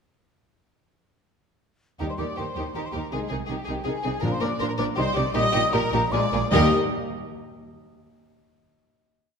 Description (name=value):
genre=quick classical-period movement for symphony orchestra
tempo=146-164 BPM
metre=3/4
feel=straight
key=Eb major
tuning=A4 = 439 Hz
part: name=rich studio violin section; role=melody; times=2.0-6.8 s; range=G4 to Bb4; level=-32 LUFS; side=left 3 dB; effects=none
part: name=mellow hollow concert flute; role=second line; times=2.0-6.7 s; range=G5 to Eb6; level=-30 LUFS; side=left 1 dB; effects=none
part: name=warm studio violin section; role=second line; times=2.0-6.7 s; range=G4 to Eb5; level=-30 LUFS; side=left 2 dB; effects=none
part: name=rich studio viola section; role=accompaniment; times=2.0-6.7 s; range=Eb3 to G4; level=-31 LUFS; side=right 1 dB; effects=none
part: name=warm French horn section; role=sustained chords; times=2.0-6.7 s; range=F3 to G4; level=-31 LUFS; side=left 6 dB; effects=none
part: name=warm studio cello section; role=bass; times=2.0-6.7 s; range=Eb2 to Eb3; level=-31 LUFS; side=right 3 dB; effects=none
part: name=warm studio double bass section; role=bass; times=2.0-6.7 s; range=Bb1 to Eb2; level=-30 LUFS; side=right 3 dB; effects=none
part: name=timpani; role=percussion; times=4.2-6.7 s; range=Bb2 to Eb3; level=-31 LUFS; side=left 1 dB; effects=none
room=wet concert hall reverb, RT60 1.8 s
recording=none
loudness=-22 LUFS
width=side -6 dB against mid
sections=2.0-6.5 A section; 6.5-7.7 final chord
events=none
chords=2.0 Eb; 3.1 Ab/C; 4.2 Bb; 5.0 Cm; 5.3 Eb/Bb; 6.1 Bb7; 6.5 Eb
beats=| 2.00 2.38 2.75 | 3.12 3.49 3.86 | 4.23 4.60 4.97 | 5.35 5.73 6.12 | 6.53